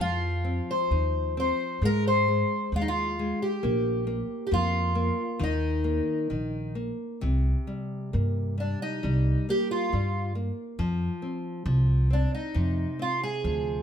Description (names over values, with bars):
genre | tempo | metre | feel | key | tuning
fado-style ballad | 66 BPM | 2/4 | rubato | Eb major, C minor from 7.2 s | A4 = 441 Hz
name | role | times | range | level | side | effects
fingerpicked twelve-string acoustic guitar | melody | 0.0-13.8 s | D4 to C5 | -28 LUFS | equal | none
nylon-string guitar | accompaniment | 0.0-13.8 s | C3 to Eb4 | -32 LUFS | left 1 dB | none
upright bass | bass | 0.0-13.8 s | Bb1 to Ab2 | -26 LUFS | equal | none
room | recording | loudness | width
light reverb | close, detailed microphones | -25 LUFS | side -8 dB against mid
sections
0.0-7.2 A section; 7.2-13.8 B section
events
none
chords
0.0 F5; 1.8 Ab5; 3.6 Bb5; 5.4 Eb5; 7.2 C5; 10.8 F5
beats
0.92 | 1.83 2.74 | 3.63 4.51 | 5.40 6.30 | 7.21 8.13 | 9.04 9.93 | 10.79 11.66 | 12.54 13.44